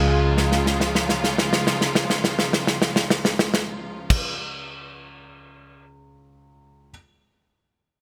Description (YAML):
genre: pop ballad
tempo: 52 BPM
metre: 4/4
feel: straight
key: Db major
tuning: A4 = 440 Hz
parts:
  - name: felt-muted upright piano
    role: accompaniment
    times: 0.0-6.9 s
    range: Db2 to Ab4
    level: -35 LUFS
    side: equal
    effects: none
  - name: rich symphonic string section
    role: sustained chords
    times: 0.0-4.3 s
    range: Db3 to F4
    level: -30 LUFS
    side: equal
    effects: none
  - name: picked steel-string acoustic guitar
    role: arpeggios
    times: 0.0-4.4 s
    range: Db3 to F4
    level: -33 LUFS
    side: equal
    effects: none
  - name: vintage muted fingered electric bass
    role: bass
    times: 0.0-4.3 s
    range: Db2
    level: -26 LUFS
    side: equal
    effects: none
  - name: natural country drum kit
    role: drums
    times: 0.4-5.8 s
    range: crash cymbal, kick drum, snare drum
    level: -24 LUFS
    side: equal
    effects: none
room: moderate plate reverb, RT60 2.6 s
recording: bright 1980s-style digital production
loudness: -22 LUFS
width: mono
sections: 0.0-4.4 A section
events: drum fill 0.4-4.1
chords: 0.0 Db